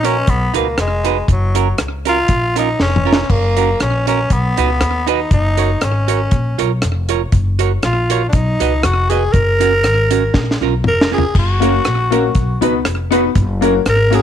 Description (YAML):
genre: ska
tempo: 119 BPM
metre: 4/4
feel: straight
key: F# major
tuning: A4 = 440 Hz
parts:
  - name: growling tenor saxophone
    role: melody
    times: 0.0-14.2 s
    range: F#3 to A#4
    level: -18 LUFS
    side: left 1 dB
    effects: none
  - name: hollow-body jazz guitar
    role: accompaniment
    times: 0.0-14.2 s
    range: C#4 to D#5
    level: -20 LUFS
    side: right 14 dB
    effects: none
  - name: upright bass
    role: bass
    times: 0.0-14.2 s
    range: E#1 to D#2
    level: -18 LUFS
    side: left 1 dB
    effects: none
  - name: deep reggae drum kit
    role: drums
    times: 0.0-14.2 s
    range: crash cymbal, hi-hat, kick drum, rim click, snare drum, toms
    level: -17 LUFS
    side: equal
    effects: slapback echo
  - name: warm upright piano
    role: stabs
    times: 11.6-14.2 s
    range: A#3 to B4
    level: -17 LUFS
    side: left 12 dB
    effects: none
room: light reverb, small room ambience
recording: 1960s-style stereo with parts hard left and right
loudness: -13 LUFS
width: side -9 dB against mid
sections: 0.0-14.2 A section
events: tenor saxophone solo 0.0-14.2; drum fill 2.8-3.3, 10.3-11.3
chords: 0.3 B; 1.3 F#; 2.3 A#m; 3.3 F#; 4.3 B; 5.3 F#; 6.3 A#m; 7.3 F#; 8.3 B; 9.3 F#; 10.3 A#m; 11.3 F#; 12.4 B; 13.4 F#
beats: 0.28 0.78 | 1.28 1.79 2.29 2.80 | 3.30 3.80 4.31 4.81 | 5.31 5.82 6.32 6.82 | 7.33 7.83 8.33 8.84 | 9.34 9.84 10.34 10.85 | 11.35 11.85 12.35 12.86 | 13.36 13.86